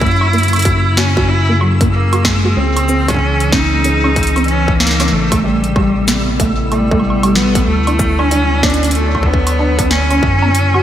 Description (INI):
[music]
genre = IDM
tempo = 94 BPM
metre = 4/4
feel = swing 62% on 16ths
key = unclear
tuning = A4 = 445 Hz
[part]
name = clear cello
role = melody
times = 0.0-10.8 s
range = F#3 to E4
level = -17 LUFS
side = equal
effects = vintage 12-bit sampler grit, digital delay
[part]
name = warbly tape-like pad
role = sustained chords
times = 0.0-10.8 s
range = C3 to C#5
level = -20 LUFS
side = left 1 dB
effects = chorus, built-in reverb, vintage 12-bit sampler grit
[part]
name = deep acid bass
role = arpeggios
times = 0.0-10.8 s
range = G3 to F#4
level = -20 LUFS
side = right 1 dB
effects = ensemble chorus, cassette tape, digital delay
[part]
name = rubbery square bass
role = bass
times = 0.0-10.8 s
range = A1 to F#2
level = -16 LUFS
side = equal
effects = none
[part]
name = booming analog drum machine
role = drums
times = 0.0-10.8 s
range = hi-hat, shaker, snare drum, woodblock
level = -20 LUFS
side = right 1 dB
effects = gated reverb
[part]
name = electronic kick drum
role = drums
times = 0.0-10.4 s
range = none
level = -18 LUFS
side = equal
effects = distortion
[part]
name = flickering grainy texture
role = texture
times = 0.0-10.8 s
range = E6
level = -27 LUFS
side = equal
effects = built-in reverb
[sound]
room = moderate lush hall reverb, RT60 2.9 s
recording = bright 1980s-style digital production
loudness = -11 LUFS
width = side -11 dB against mid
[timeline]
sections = 0.0-10.8 A section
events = filter sweep on acid bass 0.0-10.8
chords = 0.0 F#9; 2.6 C#madd9; 5.1 Am9; 7.7 Dmaj9; 10.2 F#7